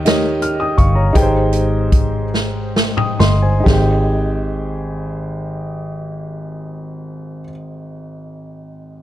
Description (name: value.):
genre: slow gospel.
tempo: 42-57 BPM (dotted quarters).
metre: 6/8.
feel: straight.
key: Ab major.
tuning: A4 = 440 Hz.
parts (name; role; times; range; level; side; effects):
warm upright piano; accompaniment; 0.0-9.0 s; Ab1 to F6; -20 LUFS; equal; none.
vintage muted fingered electric bass; bass; 0.0-7.4 s; G1 to Eb2; -18 LUFS; equal; none.
swinging big-band drum kit; drums; 0.1-3.9 s; hi-hat, kick drum, snare drum, toms; -16 LUFS; equal; none.
room: studio ambience.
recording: dark, warm production.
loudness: -14 LUFS.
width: side -13 dB against mid.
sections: 0.0-3.7 A section; 3.7-9.0 B section.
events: slowing down 0.0-3.7; drum fill 2.3-3.7.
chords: 0.0 Eb7; 1.2 Abmaj7.